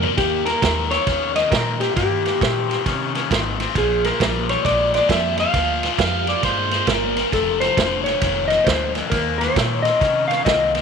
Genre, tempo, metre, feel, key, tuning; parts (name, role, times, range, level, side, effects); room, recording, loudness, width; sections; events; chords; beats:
electric blues shuffle; 134 BPM; 4/4; swing 64% on 8ths; A4 = 441 Hz
overdriven harmonica; second line; 0.0-0.1, 6.0-7.2 s; Bb4 to F5; -25 LUFS; right 7 dB
cranked stack guitar; riff; 0.0-10.8 s; F2 to Db4; -23 LUFS; left 14 dB; overdrive, phaser
upright bass; bass; 0.0-10.8 s; F1 to C3; -27 LUFS; equal
vintage drum kit; drums; 0.0-10.8 s; kick drum, ride cymbal, snare drum, toms; -23 LUFS; right 5 dB
electric slide guitar; melody; 0.2-10.7 s; G4 to F5; -20 LUFS; left 1 dB
moderate plate reverb, RT60 2.0 s, studio reverb; 1960s-style stereo with parts hard left and right; -17 LUFS; side -6 dB against mid
0.0-10.8 A section
drum fill 0.0
0.2 Eb7; 3.7 Bb7(no3); 7.3 F5; 9.1 Eb5
| 0.17 0.61 1.06 1.51 | 1.96 2.40 2.85 3.30 | 3.75 4.19 4.64 5.09 | 5.54 5.98 6.43 6.88 | 7.33 7.77 8.22 8.67 | 9.12 9.56 10.01 10.46